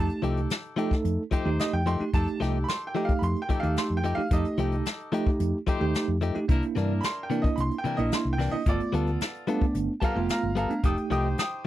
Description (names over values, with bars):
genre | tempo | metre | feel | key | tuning
straight-eighth soul blues | 110 BPM | 4/4 | straight | unclear | A4 = 440 Hz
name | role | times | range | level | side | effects
bright upright piano | second line | 0.0-11.7 s | D5 to Eb6 | -32 LUFS | right 2 dB | none
bell-like tine electric piano | accompaniment | 0.0-11.4 s | A3 to A4 | -29 LUFS | right 4 dB | medium stereo tremolo
clear horn section | sustained chords | 0.0-11.7 s | B3 to C5 | -40 LUFS | left 2 dB | none
hollow-body short-scale fingered electric bass | bass | 0.0-11.3 s | F1 to G2 | -28 LUFS | left 1 dB | none
jazz brush drum kit | drums | 0.1-11.5 s | hi-hat, kick drum, snare drum | -27 LUFS | left 1 dB | none
direct-recorded clean electric guitar | stabs | 0.2-11.3 s | C3 to A4 | -30 LUFS | left 5 dB | none
room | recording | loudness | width
little or no reverb | dry, close 1970s-style studio recording | -24 LUFS | side -14 dB against mid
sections
0.0-11.7 A section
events
upright piano solo 0.0-11.7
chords
0.0 F9; 6.5 C9; 8.7 G9; 10.8 F9